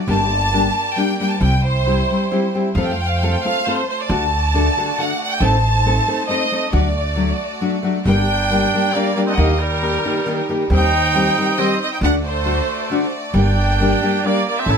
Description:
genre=mexican folk, mariachi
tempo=136 BPM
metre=3/4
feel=straight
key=G harmonic minor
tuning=A4 = 440 Hz
part: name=clear studio violin section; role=sustained chords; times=0.0-14.8 s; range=G3 to D5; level=-28 LUFS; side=right 2 dB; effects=none
part: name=bright studio violin section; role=melody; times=0.1-14.8 s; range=Bb4 to A5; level=-20 LUFS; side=right 1 dB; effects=plate reverb
part: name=nylon-string guitar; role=accompaniment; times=0.1-14.8 s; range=G2 to A4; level=-20 LUFS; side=left 2 dB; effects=none
part: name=upright bass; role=bass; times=0.1-14.8 s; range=G1 to F2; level=-19 LUFS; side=right 1 dB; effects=none
part: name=clear trumpet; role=second line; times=8.1-14.8 s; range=G3 to E4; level=-23 LUFS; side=right 5 dB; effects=none
room=moderate studio reverb, RT60 0.6 s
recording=none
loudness=-15 LUFS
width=side -6 dB against mid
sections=0.0-14.8 A section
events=none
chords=0.1 Gm; 1.4 C; 2.8 F; 4.1 D; 5.4 Adim; 6.7 D; 8.1 Gm; 9.4 Eb; 10.7 Cm/Eb; 12.0 D; 13.4 Gm

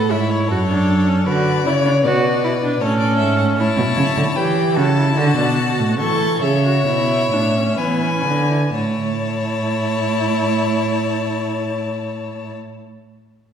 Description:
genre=classical, baroque-style fugue for string quartet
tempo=59-78 BPM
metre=3/4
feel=straight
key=A major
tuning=A4 = 441 Hz
part: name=rich violin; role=melody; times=0.0-12.5 s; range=B4 to C#6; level=-25 LUFS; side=left 6 dB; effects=none
part: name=rich violin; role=second line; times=0.0-12.5 s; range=F#4 to D5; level=-23 LUFS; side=left 2 dB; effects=none
part: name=warm viola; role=accompaniment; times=0.0-12.5 s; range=B3 to A4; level=-22 LUFS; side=right 1 dB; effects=none
part: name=warm cello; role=bass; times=0.0-12.6 s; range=F#2 to E3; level=-19 LUFS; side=right 2 dB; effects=none
room=wet scoring stage reverb, RT60 1.5 s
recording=heard from further back in the room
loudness=-16 LUFS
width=side -8 dB against mid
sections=0.0-8.8 A section; 8.8-11.8 B section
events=slowing down 2.4-8.8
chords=0.5 F#m; 1.3 Bm; 2.8 A; 3.6 A7; 5.2 D; 6.0 A; 7.8 E7; 8.8 A

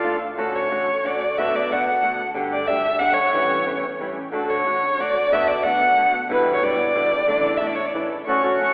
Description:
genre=tango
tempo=183 BPM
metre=3/4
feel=rubato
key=D major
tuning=A4 = 439 Hz
part: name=bandoneon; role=melody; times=0.0-0.2, 8.3-8.7 s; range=C#4 to D5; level=-25 LUFS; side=equal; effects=none
part: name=warm violin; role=second line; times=0.0-8.7 s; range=A4 to C#6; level=-22 LUFS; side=equal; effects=none
part: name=flamenco guitar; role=accompaniment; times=0.0-8.7 s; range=B2 to G4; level=-29 LUFS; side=equal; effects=none
part: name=dark studio string section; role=stabs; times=0.0-8.7 s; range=A3 to A4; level=-36 LUFS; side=equal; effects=none
part: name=clear double bass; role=bass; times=0.0-8.7 s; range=E1 to E2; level=-42 LUFS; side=equal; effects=none
room=wet concert hall reverb, RT60 2.1 s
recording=recorded in a church or concert hall, vinyl crackle, telephone sound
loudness=-21 LUFS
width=mono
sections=0.4-8.3 A section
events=violin solo 0.4-8.3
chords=0.4 Dmaj7; 1.4 Bm7/D; 2.4 Gsus2; 3.3 A7; 4.3 D; 5.3 Bm7/D; 6.3 Em7; 7.3 Asus4; 7.9 A

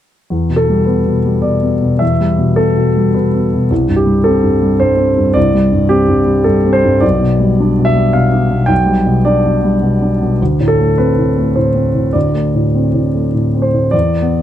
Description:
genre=neoclassical minimalist piano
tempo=106 BPM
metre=3/4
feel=rubato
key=unclear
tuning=A4 = 444 Hz
part: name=warm grand piano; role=solo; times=0.3-14.4 s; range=B1 to G5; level=-10 LUFS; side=equal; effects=none
room=light reverb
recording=dark, warm production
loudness=-10 LUFS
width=side -11 dB against mid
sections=0.3-13.9 A section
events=none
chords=0.3 Em; 3.7 C5; 7.0 G/B; 10.4 D5

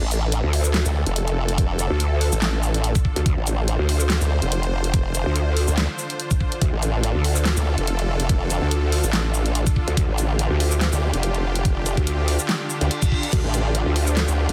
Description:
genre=heavy wobble dubstep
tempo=143 BPM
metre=4/4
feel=swing 54% on 16ths, half-time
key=D minor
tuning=A4 = 440 Hz
part: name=supersaw pad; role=sustained chords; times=0.0-14.5 s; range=D3 to C5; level=-31 LUFS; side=equal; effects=sidechain pumping
part: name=formant-sweep wobble bass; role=bass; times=0.0-14.5 s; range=F1 to D2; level=-24 LUFS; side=equal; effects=chorus, overdrive
part: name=big-room dance drum kit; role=drums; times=0.1-14.5 s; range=crash cymbal, handclaps, hi-hat, shaker, snare drum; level=-29 LUFS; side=equal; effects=none
part: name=growl bass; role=bass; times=0.4-14.3 s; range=D2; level=-23 LUFS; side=equal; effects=chorus, overdrive
part: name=electronic kick drum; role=drums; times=1.6-13.4 s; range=none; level=-23 LUFS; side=equal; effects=none
part: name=reverse cymbal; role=sound effects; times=12.7-13.3 s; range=none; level=-36 LUFS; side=equal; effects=none
room=light reverb, digital ambience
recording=dense, heavily limited modern master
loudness=-21 LUFS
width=mono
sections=0.0-14.5 A section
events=reverse cymbal 12.7-13.3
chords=0.0 Dm

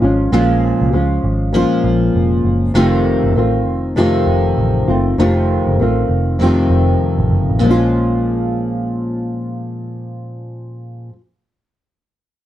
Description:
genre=indie pop, bedroom pop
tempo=99 BPM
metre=4/4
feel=swing 60% on 16ths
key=Bb minor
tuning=A4 = 442 Hz
part: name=nylon-string guitar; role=accompaniment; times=0.0-11.2 s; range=F2 to F4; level=-15 LUFS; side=left 1 dB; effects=analog chorus, warbly pitch drift
part: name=vintage muted picked electric bass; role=bass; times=0.0-10.6 s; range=F1 to Db2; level=-18 LUFS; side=right 1 dB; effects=none
room=moderate studio reverb, RT60 0.6 s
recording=dark, warm production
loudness=-13 LUFS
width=side -12 dB against mid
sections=0.0-7.6 A section; 7.6-10.0 B section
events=none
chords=0.0 Bbm7; 2.8 F7; 7.6 Bbm7

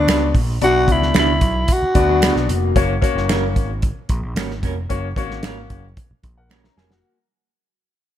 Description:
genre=uptempo 1960s-style soul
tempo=112 BPM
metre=4/4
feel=straight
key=F# mixolydian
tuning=A4 = 442 Hz
part: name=growling tenor saxophone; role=melody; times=0.0-2.5 s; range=D4 to F#4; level=-18 LUFS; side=equal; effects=none
part: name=clear concert grand piano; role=accompaniment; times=0.0-7.2 s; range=B2 to A#5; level=-23 LUFS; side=left 7 dB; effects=none
part: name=overdriven picked electric bass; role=bass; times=0.0-7.0 s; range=E#1 to D2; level=-22 LUFS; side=equal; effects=none
part: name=electric guitar through a small old amp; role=stabs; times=0.1-6.9 s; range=A#3 to B4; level=-26 LUFS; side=right 8 dB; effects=none
part: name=warm soul drum kit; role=drums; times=0.1-7.0 s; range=hi-hat, kick drum, snare drum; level=-20 LUFS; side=equal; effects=none
part: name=finger snap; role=percussion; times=0.1-6.6 s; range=none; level=-28 LUFS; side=right 5 dB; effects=none
part: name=electric guitar through a small old amp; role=riff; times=2.1-2.7, 6.6-7.2 s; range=F#3 to A#4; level=-26 LUFS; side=left 7 dB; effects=lush chorus
room=light reverb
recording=none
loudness=-16 LUFS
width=side -11 dB against mid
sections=0.0-2.8 A section; 2.8-7.0 B section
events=fade-out 2.8-7.0; drum fill 6.5-7.0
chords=0.0 Bm; 2.8 F#

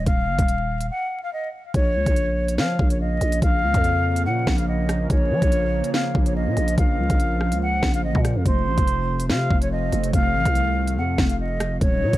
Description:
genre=hip hop, drill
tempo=143 BPM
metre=4/4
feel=half-time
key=Bb harmonic minor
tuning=A4 = 440 Hz
part: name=mellow silver concert flute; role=melody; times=0.0-12.2 s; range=C5 to Gb5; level=-25 LUFS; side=equal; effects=analog delay
part: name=growling 808-style bass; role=bass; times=0.0-12.2 s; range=Eb1 to F3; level=-23 LUFS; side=equal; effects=none
part: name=drill drum kit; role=drums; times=0.1-12.2 s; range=hi-hat, kick drum, rim click, snare drum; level=-22 LUFS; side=equal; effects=overdrive
part: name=warm analog pad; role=sustained chords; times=1.7-12.2 s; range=C3 to Eb4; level=-29 LUFS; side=right 1 dB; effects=wide subtle chorus
room=little or no reverb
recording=echo-heavy mix, vinyl crackle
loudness=-19 LUFS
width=side -15 dB against mid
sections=0.0-1.7 A section; 1.7-12.2 B section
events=break 0.9-1.7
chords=0.0 N.C.; 1.7 Bbm; 8.5 F

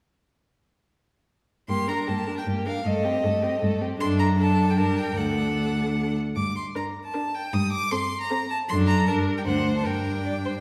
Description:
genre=quick classical-period movement for string quartet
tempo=155 BPM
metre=3/4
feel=straight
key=G minor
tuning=A4 = 440 Hz
part: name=rich violin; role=melody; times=1.7-10.6 s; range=Eb5 to Eb6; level=-31 LUFS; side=equal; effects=none
part: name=rich violin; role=second line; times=1.7-10.5 s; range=G4 to D5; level=-35 LUFS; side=equal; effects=none
part: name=warm viola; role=accompaniment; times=1.7-10.6 s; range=A3 to D4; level=-32 LUFS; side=equal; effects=none
part: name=warm cello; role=bass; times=1.7-10.6 s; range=D2 to G2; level=-28 LUFS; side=equal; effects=none
room=wet recital hall reverb, RT60 1.4 s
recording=heard from further back in the room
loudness=-25 LUFS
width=mono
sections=1.7-10.6 A section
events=none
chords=1.7 Gm; 2.9 Am7b5/G; 4.0 D/F#; 4.8 Gm; 5.2 D; 6.4 Gm; 7.5 C7(no3)/G; 8.7 D/F#; 9.1 Gm; 9.5 D7; 9.9 Gm

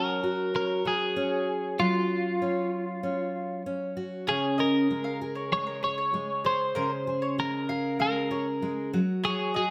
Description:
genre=pop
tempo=97 BPM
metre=4/4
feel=straight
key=Db major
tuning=A4 = 440 Hz
part: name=twelve-string electric guitar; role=melody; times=0.0-9.7 s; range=F4 to Db5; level=-31 LUFS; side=equal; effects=spring reverb, plate reverb
part: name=fingerpicked twelve-string acoustic guitar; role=accompaniment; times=0.0-9.7 s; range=Db3 to Ab4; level=-32 LUFS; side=equal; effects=none
part: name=mandolin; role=arpeggios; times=4.3-9.7 s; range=Bb4 to F5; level=-38 LUFS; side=equal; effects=none
room=light reverb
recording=close, detailed microphones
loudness=-28 LUFS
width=mono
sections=0.0-9.7 A section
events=none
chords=0.0 Gbmaj7; 4.3 Db6; 8.9 Gb5

